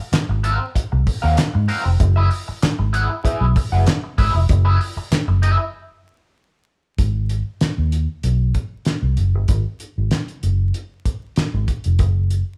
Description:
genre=funk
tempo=96 BPM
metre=4/4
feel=straight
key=unclear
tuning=A4 = 440 Hz
part: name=vintage muted fingered electric bass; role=bass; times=0.1-12.4 s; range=F1 to Ab2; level=-20 LUFS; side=equal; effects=none
part: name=cloth-damped thuddy drum kit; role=drums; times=0.1-12.5 s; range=handclaps, hi-hat, kick drum, snare drum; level=-23 LUFS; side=equal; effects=none
part: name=electric guitar at the edge of break-up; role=accompaniment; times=0.3-5.6 s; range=C4 to Gb5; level=-26 LUFS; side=equal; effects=wah
room=light reverb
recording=band playing live in one room, vinyl crackle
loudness=-19 LUFS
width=mono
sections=0.0-7.0 A section; 7.0-12.6 B section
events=break 5.7-7.0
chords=0.0 Ab13; 2.0 Gb9sus4; 7.0 Ab5; 12.0 N.C.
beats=0.13 0.75 1.37 | 2.00 2.62 3.25 3.87 | 4.49 5.12 5.74 6.36 | 6.99 7.61 8.24 8.86 | 9.49 10.11 10.74 11.37 | 11.99

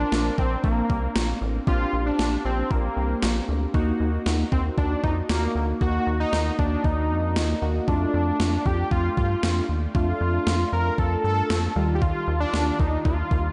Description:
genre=synth-pop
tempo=116 BPM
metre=4/4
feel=straight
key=Bb major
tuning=A4 = 438 Hz
part: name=unison lead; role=melody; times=0.0-13.5 s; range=Bb3 to Bb4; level=-29 LUFS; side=equal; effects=diffuse ambient delay, shimmer reverb
part: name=warm analog keys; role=accompaniment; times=0.0-13.5 s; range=Eb3 to Bb4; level=-32 LUFS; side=equal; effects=chorus, phaser, shimmer reverb
part: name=rubbery square bass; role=bass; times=0.0-13.5 s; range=A1 to G2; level=-28 LUFS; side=equal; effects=none
part: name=gated 80s digital drum machine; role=drums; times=0.1-13.4 s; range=kick drum, snare drum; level=-29 LUFS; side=equal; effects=gated reverb, gated reverb snare, overdrive
room=wet lush hall reverb, RT60 2.4 s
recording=dreamy mix soaked in reverb, nothing above 10.9 kHz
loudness=-24 LUFS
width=mono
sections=0.0-13.5 A section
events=none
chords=0.0 Bbadd9; 3.7 Ebm; 7.9 F6; 11.8 Ebadd9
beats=0.12 0.64 1.16 | 1.67 2.19 2.71 3.23 | 3.74 4.26 4.78 5.29 | 5.81 6.33 6.84 7.36 | 7.88 8.40 8.91 9.43 | 9.95 10.47 10.98 11.50 | 12.02 12.54 13.05

